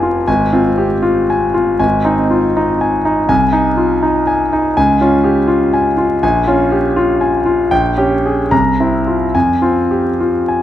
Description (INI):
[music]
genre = classical, romantic character piece for solo piano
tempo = 69-85 BPM (dotted quarters)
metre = 6/8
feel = rubato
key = F minor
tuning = A4 = 439 Hz
[part]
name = clear concert grand piano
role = solo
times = 0.0-10.6 s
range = F1 to Bb5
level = -11 LUFS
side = equal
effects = none
[sound]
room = moderate recital hall reverb, RT60 1.4 s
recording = close, detailed microphones, vinyl crackle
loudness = -11 LUFS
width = side -12 dB against mid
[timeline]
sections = 0.0-10.6 A section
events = none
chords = 0.3 Fm/Ab; 1.8 Ab; 3.3 Ab/C; 4.8 Db; 6.2 Bbm7; 7.7 Gdim/Bb; 8.5 C7; 9.3 Fm